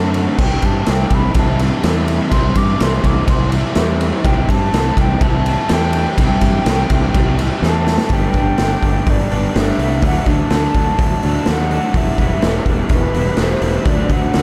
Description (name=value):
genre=rock, shoegaze and dream pop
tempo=125 BPM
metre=4/4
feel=straight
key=unclear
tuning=A4 = 440 Hz
part: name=mellow silver concert flute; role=melody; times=0.0-14.4 s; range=B4 to D6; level=-25 LUFS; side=equal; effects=diffuse ambient delay
part: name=raw garage guitar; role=riff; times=0.0-14.4 s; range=G2 to F#4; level=-22 LUFS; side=equal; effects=overdrive, subtle chorus
part: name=fuzz fingered electric bass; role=bass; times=0.0-14.4 s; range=E1 to G2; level=-21 LUFS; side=equal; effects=overdrive
part: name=raw garage drum kit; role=drums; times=0.1-14.4 s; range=crash cymbal, hi-hat, kick drum, ride cymbal, snare drum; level=-20 LUFS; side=equal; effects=none
room=moderate huge ambient reverb, RT60 7.3 s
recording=dreamy mix soaked in reverb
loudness=-16 LUFS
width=mono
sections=0.0-8.1 A section; 8.1-14.4 B section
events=drum fill 7.6-8.1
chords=0.4 C; 8.1 G; 10.0 D; 12.0 Em; 13.9 D